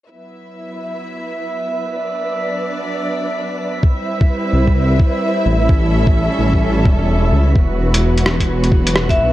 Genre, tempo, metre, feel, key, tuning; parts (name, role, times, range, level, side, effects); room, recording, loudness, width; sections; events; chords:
future garage; 129 BPM; 4/4; swing 63% on 16ths; E minor; A4 = 440 Hz
rich studio string section; sustained chords; 0.1-9.3 s; E3 to E5; -21 LUFS; equal; vintage 12-bit sampler grit, sidechain pumping
drifting glass-harmonics texture; texture; 0.6-9.3 s; B4 to E5; -26 LUFS; right 2 dB; chorus, built-in reverb
electronic kick drum; drums; 3.8-9.2 s; -14 LUFS; equal
dark detuned saw bass; bass; 4.5-9.3 s; E1 to C#2; -15 LUFS; equal; sidechain pumping
lo-fi sampler-style drum kit; drums; 7.9-9.2 s; hi-hat, rim click; -19 LUFS; equal
vibraphone with medium hard mallets; melody; 9.1-9.3 s; E5; -15 LUFS; left 1 dB
light reverb; -14 LUFS; side -15 dB against mid
0.1-7.6 A section; 7.6-9.3 B section
fade-in on string section 0.1-7.6; kick drops out 7.1-7.6
0.1 Esus2; 2.0 Bm; 3.8 Cmaj7; 5.7 A7; 7.6 Esus2